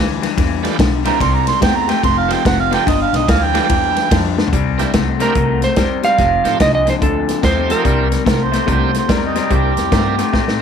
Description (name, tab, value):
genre	electric blues shuffle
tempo	145 BPM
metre	4/4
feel	swing 63% on 8ths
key	C mixolydian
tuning	A4 = 441 Hz
part	electric guitar through a small old amp	riff	0.0-10.6 s	F2 to A3	-19 LUFS	left 15 dB	spring reverb
part	upright bass	bass	0.0-10.6 s	F1 to A2	-20 LUFS	equal	none
part	natural country drum kit	drums	0.2-10.6 s	hi-hat, kick drum, ride cymbal, snare drum, toms	-18 LUFS	equal	none
part	bright tonewheel organ	accompaniment	0.6-10.6 s	A3 to Bb4	-24 LUFS	right 12 dB	slow rotary speaker, overdrive
part	overdriven harmonica	second line	1.1-4.2, 8.3-10.6 s	Eb4 to C6	-19 LUFS	right 12 dB	none
part	clean lap steel guitar	melody	5.2-8.2 s	A4 to F5	-16 LUFS	right 4 dB	none
room	light reverb, studio reverb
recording	1960s-style stereo with parts hard left and right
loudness	-13 LUFS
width	side -7 dB against mid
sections	0.0-4.5 A section; 4.5-10.6 B section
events	harmonica solo 0.0-4.5; drum fill 4.3, 10.3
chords	0.0 G9; 1.2 C; 2.0 F9; 2.9 G9; 4.5 C9; 6.2 F9; 7.8 C9